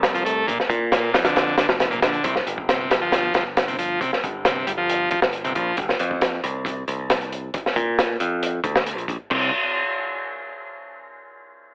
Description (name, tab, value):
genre	breakbeat, breaks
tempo	136 BPM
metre	4/4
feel	straight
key	unclear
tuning	A4 = 440 Hz
part	modern bright picked electric bass	bass	0.0-9.5 s	F1 to Bb2	-26 LUFS	equal	none
part	crunchy breakbeat drum kit	drums	0.0-9.4 s	crash cymbal, hi-hat, kick drum, snare drum	-22 LUFS	equal	none
part	combo organ	riff	0.1-5.8, 9.3-9.5 s	Bb2 to A3	-24 LUFS	equal	tape echo
room	light reverb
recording	telephone sound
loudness	-19 LUFS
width	side -25 dB against mid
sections	0.0-2.2 A section; 2.2-9.3 B section; 9.3-11.1 C section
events	drop 0.0-2.2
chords	0.5 Bb; 2.2 C5; 5.8 F5; 7.5 Bb; 9.3 N.C.